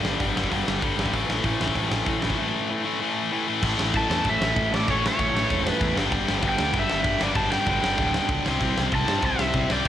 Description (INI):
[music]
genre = punk rock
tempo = 193 BPM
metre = 4/4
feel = straight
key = unclear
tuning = A4 = 439 Hz
[part]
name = distorted electric guitar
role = riff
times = 0.0-9.9 s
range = G2 to C5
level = -30 LUFS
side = right 10 dB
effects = overdrive
[part]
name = tight distorted guitar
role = riff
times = 0.0-9.9 s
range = G2 to C4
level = -26 LUFS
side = left 7 dB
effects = distortion
[part]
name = fuzz picked electric bass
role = bass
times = 0.0-9.9 s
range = D1 to G2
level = -29 LUFS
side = right 1 dB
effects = overdrive
[part]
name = big rock drum kit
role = drums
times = 0.0-9.9 s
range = crash cymbal, hi-hat, kick drum, snare drum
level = -28 LUFS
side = right 1 dB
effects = cassette tape
[part]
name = cranked stack guitar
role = melody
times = 4.0-9.9 s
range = C#5 to A5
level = -27 LUFS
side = right 1 dB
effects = overdrive, cassette tape
[sound]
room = little or no reverb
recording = home recording on cassette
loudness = -21 LUFS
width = side -11 dB against mid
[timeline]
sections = 0.0-3.6 A section; 3.6-9.9 B section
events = none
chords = 0.0 G5; 1.1 A5; 3.6 A; 6.0 G; 8.5 C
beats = 0.20 0.51 0.83 | 1.14 1.45 1.76 2.08 | 2.39 2.70 3.01 3.33 | 3.64 3.95 4.26 4.57 | 4.88 5.20 5.51 5.82 | 6.13 6.44 6.75 7.06 | 7.37 7.69 8.00 8.31 | 8.62 8.93 9.24 9.55 | 9.87